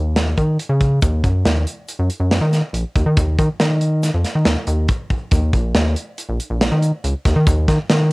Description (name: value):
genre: progressive instrumental, band music in an uneven meter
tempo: 140 BPM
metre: 5/4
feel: straight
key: Eb minor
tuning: A4 = 439 Hz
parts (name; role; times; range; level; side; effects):
- rubbery square bass; bass; 0.0-8.1 s; Bb1 to Eb3; -16 LUFS; equal; none
- modern studio drum kit; drums; 0.2-8.0 s; hi-hat, kick drum, snare drum; -19 LUFS; equal; cassette tape
- egg shaker; percussion; 1.0-8.0 s; none; -40 LUFS; left 10 dB; none
room: little or no reverb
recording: home recording on cassette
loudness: -15 LUFS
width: side -25 dB against mid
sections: 0.0-1.0 A section; 1.0-8.1 B section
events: none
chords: none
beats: 0.17 0.60 | 1.03 1.46 1.89 2.32 2.75 | 3.17 3.60 4.03 4.46 4.89 | 5.32 5.75 6.18 6.61 7.04 | 7.47 7.90